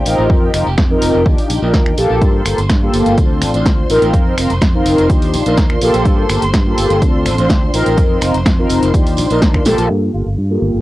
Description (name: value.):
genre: filtered disco house.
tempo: 125 BPM.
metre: 4/4.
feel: straight.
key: G minor.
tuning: A4 = 440 Hz.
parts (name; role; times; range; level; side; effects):
mellow synth brass; accompaniment; 0.0-10.8 s; Bb3 to C5; -15 LUFS; equal; chorus, phaser, sidechain pumping, low-pass filter.
clear chamber violin section; sustained chords; 0.0-10.8 s; F4 to C6; -26 LUFS; right 2 dB; vintage 12-bit sampler grit, sidechain pumping, low-pass filter.
modern bright fingered electric bass; bass; 0.1-10.8 s; F1 to G2; -18 LUFS; equal; tube saturation, sidechain pumping, low-pass filter.
punchy analog drum machine; drums; 0.1-9.9 s; finger snaps, hi-hat, snare drum; -20 LUFS; equal; overdrive, sidechain pumping on cymbals, low-pass filter on cymbals, cassette tape, sidechain pumping on hats, low-pass filter on hats, low-pass filter on snare.
tambourine; percussion; 0.1-9.9 s; none; -32 LUFS; right 8 dB; sidechain pumping on perc, low-pass filter on perc.
electronic kick drum; drums; 0.3-9.6 s; none; -14 LUFS; equal; overdrive, cassette tape.
mellow horn section; melody; 10.1-10.3 s; F4; -33 LUFS; right 1 dB; sidechain pumping, low-pass filter, cassette tape.
room: light reverb.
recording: home recording on cassette.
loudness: -11 LUFS.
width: side -16 dB against mid.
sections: 0.0-9.9 A section.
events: drum fill 9.7.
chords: 0.3 F7sus4; 1.3 Ebmaj9; 2.2 Gm9; 3.2 Dm7; 4.1 F7sus4; 5.1 Ebmaj9; 6.1 Gm9; 7.0 Dm7; 8.0 F7sus4; 8.9 Ebmaj9; 9.9 Gm9.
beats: | 0.30 0.78 1.26 1.74 | 2.22 2.70 3.18 3.66 | 4.14 4.62 5.10 5.58 | 6.06 6.54 7.02 7.50 | 7.98 8.46 8.94 9.42 | 9.90 10.38.